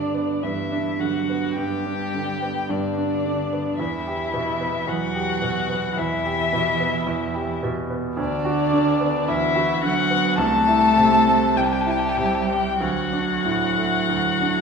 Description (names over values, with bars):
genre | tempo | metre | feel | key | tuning
classical, slow romantic movement for piano quartet | 47-55 BPM | 4/4 | rubato | G major | A4 = 440 Hz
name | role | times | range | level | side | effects
muted violin | melody | 0.0-14.6 s | D5 to A5 | -23 LUFS | left 5 dB | none
muted cello | second line | 0.0-14.6 s | D3 to A3 | -27 LUFS | right 2 dB | none
muted violin | second line | 0.0-14.6 s | D4 to A4 | -27 LUFS | left 2 dB | none
clear grand piano | accompaniment | 0.0-14.6 s | C2 to G4 | -24 LUFS | right 4 dB | none
room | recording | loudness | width
wet recital hall reverb, RT60 1.4 s | heard from further back in the room | -19 LUFS | side -5 dB against mid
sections
0.0-14.6 A section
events
none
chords
0.0 G; 3.8 Em; 8.2 Bm/D; 10.4 Am/C; 12.8 D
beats
0.43 1.57 2.69 | 3.79 4.88 5.98 7.08 | 8.19 9.28 10.39 11.58 | 12.82 14.10